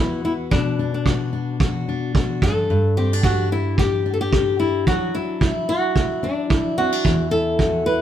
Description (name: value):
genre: acoustic pop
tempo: 110 BPM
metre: 4/4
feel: swing 55% on 16ths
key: E minor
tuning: A4 = 439 Hz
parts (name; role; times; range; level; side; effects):
- flamenco guitar; melody; 0.0-8.0 s; D4 to B4; -23 LUFS; equal; none
- fingerpicked steel-string acoustic guitar; accompaniment; 0.0-8.0 s; E2 to G4; -21 LUFS; left 2 dB; none
- kick drum; drums; 0.5-7.7 s; none; -21 LUFS; right 2 dB; none
room: light reverb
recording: band playing live in one room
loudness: -18 LUFS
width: side -10 dB against mid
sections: 0.0-8.0 A section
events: none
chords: 0.0 Esus2; 0.5 Bm; 2.4 G5; 4.9 Dadd9/F#; 7.0 Esus2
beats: | 0.52 1.06 1.60 2.15 | 2.69 3.24 3.78 4.33 | 4.87 5.41 5.96 6.50 | 7.05 7.59